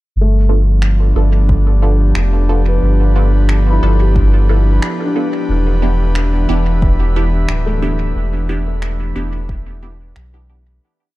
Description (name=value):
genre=ambient dub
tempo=90 BPM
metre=4/4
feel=swing 54% on 16ths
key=G mixolydian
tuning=A4 = 438 Hz
part: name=airy breathy pad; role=sustained chords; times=0.5-10.8 s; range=E3 to B4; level=-22 LUFS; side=equal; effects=chorus
part: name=felt-muted upright piano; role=arpeggios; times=0.2-10.8 s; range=A3 to B5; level=-26 LUFS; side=left 4 dB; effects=dub echo
part: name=warm sub bass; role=bass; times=0.2-10.8 s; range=D1 to B1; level=-13 LUFS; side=equal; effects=none
part: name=filtered dub chord stab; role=stabs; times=0.5-10.6 s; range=B3 to A4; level=-25 LUFS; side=right 2 dB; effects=phaser, dub echo
part: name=electronic finger snaps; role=drums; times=0.8-10.3 s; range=none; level=-28 LUFS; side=equal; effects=dub echo
part: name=electronic kick drum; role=drums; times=1.5-9.6 s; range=none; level=-16 LUFS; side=equal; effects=overdrive
part: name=drifting glass-harmonics texture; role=texture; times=6.1-10.8 s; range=E5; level=-33 LUFS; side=equal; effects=chorus, built-in reverb
room=little or no reverb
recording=dark, warm production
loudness=-12 LUFS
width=side -18 dB against mid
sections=0.2-10.8 groove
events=fade-out 7.3-10.8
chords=0.2 G7; 5.5 Em7